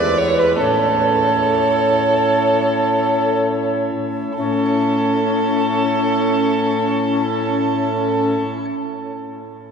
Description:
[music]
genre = classical, baroque-style sonata movement with continuo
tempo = free time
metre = none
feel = none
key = A major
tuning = A4 = 445 Hz
[part]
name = tenor recorder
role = melody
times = 0.0-8.4 s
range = C#4 to C#5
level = -22 LUFS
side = left 2 dB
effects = none
[part]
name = warm violin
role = second line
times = 0.0-8.4 s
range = A4 to D5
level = -20 LUFS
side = right 3 dB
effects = none
[part]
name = chamber organ, sparkling flutes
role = accompaniment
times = 0.0-8.6 s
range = E2 to C#5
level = -22 LUFS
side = left 1 dB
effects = none
[part]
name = warm bassoon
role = bass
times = 0.0-8.4 s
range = E2 to A2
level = -23 LUFS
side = right 1 dB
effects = none
[sound]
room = wet cathedral reverb, RT60 5.1 s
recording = recorded in a church or concert hall, nothing above 10.7 kHz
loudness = -15 LUFS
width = side -6 dB against mid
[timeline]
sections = 0.0-4.4 A section; 4.4-8.4 B section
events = slowing down 0.0-4.4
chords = 0.0 E7; 0.6 A

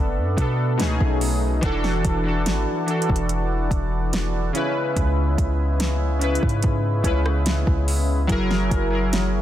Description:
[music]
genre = contemporary R&B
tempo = 72 BPM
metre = 4/4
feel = straight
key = unclear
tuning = A4 = 445 Hz
[part]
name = warm analog keys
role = accompaniment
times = 0.0-9.4 s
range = B2 to B4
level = -24 LUFS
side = left 1 dB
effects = chorus
[part]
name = mellow accordion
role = sustained chords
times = 0.0-9.4 s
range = C#3 to A#4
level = -31 LUFS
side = right 1 dB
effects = none
[part]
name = warm 808-style bass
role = bass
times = 0.0-9.4 s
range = E1 to B2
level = -23 LUFS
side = equal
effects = none
[part]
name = smooth R&B drum kit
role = drums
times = 0.4-9.3 s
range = hi-hat, kick drum, rim click, snare drum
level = -25 LUFS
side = equal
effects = overdrive
[sound]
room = digital ambience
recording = dense, heavily limited modern master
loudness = -19 LUFS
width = side -12 dB against mid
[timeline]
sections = 0.0-9.4 A section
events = none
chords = 0.0 Bm7/F#; 0.8 B13; 1.6 E9sus4; 4.5 C#m7; 8.3 F#9

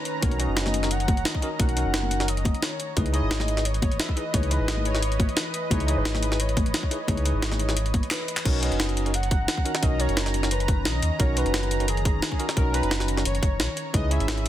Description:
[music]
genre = liquid drum and bass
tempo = 175 BPM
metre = 4/4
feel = swing 53% on 16ths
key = B major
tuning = A4 = 441 Hz
[part]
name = warm velvety synth lead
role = melody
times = 0.0-14.5 s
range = G#4 to F#5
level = -32 LUFS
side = left 1 dB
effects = chorus, ping-pong delay
[part]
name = lush unison pad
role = sustained chords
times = 0.0-14.5 s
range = D#3 to D#6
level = -34 LUFS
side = equal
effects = chorus, sidechain pumping
[part]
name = jungle sampler-style drum kit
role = drums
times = 0.1-14.5 s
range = crash cymbal, handclaps, hi-hat, snare drum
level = -28 LUFS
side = equal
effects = soft clipping on snare
[part]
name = bell-like tine electric piano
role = accompaniment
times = 0.2-14.5 s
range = C#4 to A#5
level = -32 LUFS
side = equal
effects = ping-pong delay
[part]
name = sub bass with octave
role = bass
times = 0.2-14.5 s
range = F#1 to D#2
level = -26 LUFS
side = equal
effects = tube saturation
[part]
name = electronic kick drum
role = drums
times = 0.2-14.0 s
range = none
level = -24 LUFS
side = equal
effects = overdrive
[part]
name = congas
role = percussion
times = 0.2-8.0 s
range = none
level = -34 LUFS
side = left 3 dB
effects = none
[sound]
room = light reverb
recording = dense, heavily limited modern master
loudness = -22 LUFS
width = side -12 dB against mid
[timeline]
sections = 0.0-8.5 A section; 8.5-14.5 A section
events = drop 0.0-8.5, 8.5-14.5; drum fill 8.1-8.5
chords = 0.0 Bmaj9; 2.8 C#m9; 8.5 Bmaj9; 13.8 C#m9

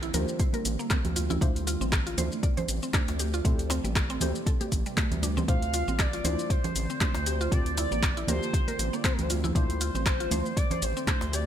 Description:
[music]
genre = afro house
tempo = 118 BPM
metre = 4/4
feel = swing 55% on 16ths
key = D minor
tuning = A4 = 439 Hz
[part]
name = ethereal airy pad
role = sustained chords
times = 0.0-11.5 s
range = C3 to E5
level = -38 LUFS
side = right 1 dB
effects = ensemble chorus, built-in reverb, sidechain pumping
[part]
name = mallet-like synth pluck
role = arpeggios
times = 0.0-11.5 s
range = G3 to D5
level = -36 LUFS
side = equal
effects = chorus, sidechain pumping, dub echo
[part]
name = deep mellow chord stab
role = stabs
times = 0.0-11.5 s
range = A3 to C5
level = -39 LUFS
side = left 2 dB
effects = chorus, phaser, sidechain pumping, dub echo
[part]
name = round analog bass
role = bass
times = 0.0-11.5 s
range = A1 to D2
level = -31 LUFS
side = equal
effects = sidechain pumping
[part]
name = deep house drum kit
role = drums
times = 0.0-11.4 s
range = handclaps, hi-hat, rim click, shaker, toms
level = -32 LUFS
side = left 1 dB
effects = none
[part]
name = congas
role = percussion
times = 0.1-11.2 s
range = none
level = -35 LUFS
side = right 5 dB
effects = none
[part]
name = electronic kick drum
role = drums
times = 0.4-11.2 s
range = none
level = -27 LUFS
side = equal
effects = none
[part]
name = djembe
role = percussion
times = 1.2-11.3 s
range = none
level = -39 LUFS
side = left 4 dB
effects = none
[part]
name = expressive portamento lead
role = melody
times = 5.5-11.5 s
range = Bb4 to F5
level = -34 LUFS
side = equal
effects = wide subtle chorus, dub echo
[sound]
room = digital ambience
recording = none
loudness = -25 LUFS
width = side -10 dB against mid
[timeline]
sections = 0.0-11.5 A section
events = none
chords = 0.0 C9sus4; 1.4 Dm9; 3.5 Am7; 5.5 Dm9; 7.5 C9sus4; 9.6 Dm9

